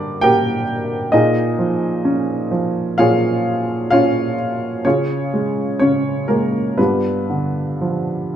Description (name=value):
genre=classical, lyrical solo piano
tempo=56-66 BPM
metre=4/4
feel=rubato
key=unclear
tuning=A4 = 441 Hz
part: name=warm upright piano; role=solo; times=0.0-8.4 s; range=G2 to G5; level=-16 LUFS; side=equal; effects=none
room=moderate recital hall reverb, RT60 1.5 s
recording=dark, warm production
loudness=-16 LUFS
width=side -10 dB against mid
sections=0.0-8.4 A section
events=none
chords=0.0 Gm; 1.1 Bbm7; 4.8 Db; 6.8 G7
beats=0.21 | 1.12 2.04 2.98 3.92 | 4.85 5.80 6.78 7.81